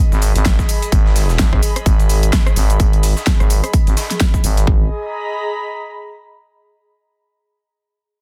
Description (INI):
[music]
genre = bass house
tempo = 128 BPM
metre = 4/4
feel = swing 58% on 16ths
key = G# minor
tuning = A4 = 443 Hz
[part]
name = airy breathy pad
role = texture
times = 0.0-6.5 s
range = G#4 to B5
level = -28 LUFS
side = equal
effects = chorus, sidechain pumping
[part]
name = growling FM bass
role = bass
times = 0.1-4.9 s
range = G#1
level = -18 LUFS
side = equal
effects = tube saturation, sidechain pumping
[part]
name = big-room dance drum kit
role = drums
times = 0.1-4.7 s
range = cabasa, hi-hat, rim click, snare drum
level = -25 LUFS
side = equal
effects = overdrive
[part]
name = breakbeat sampler-style drum kit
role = drums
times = 0.1-4.7 s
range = hi-hat, snare drum, tambourine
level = -33 LUFS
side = equal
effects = none
[part]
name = electronic kick drum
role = drums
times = 0.5-4.8 s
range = none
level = -17 LUFS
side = equal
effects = overdrive
[sound]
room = digital ambience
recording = dense, heavily limited modern master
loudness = -16 LUFS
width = mono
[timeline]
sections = 0.0-4.7 A section; 4.7-6.5 B section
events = filter sweep on FM bass 0.0-4.7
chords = 0.0 G#m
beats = 0.45 | 0.92 1.39 1.86 2.33 | 2.80 3.27 3.73 4.20 | 4.67 5.14 5.61 6.08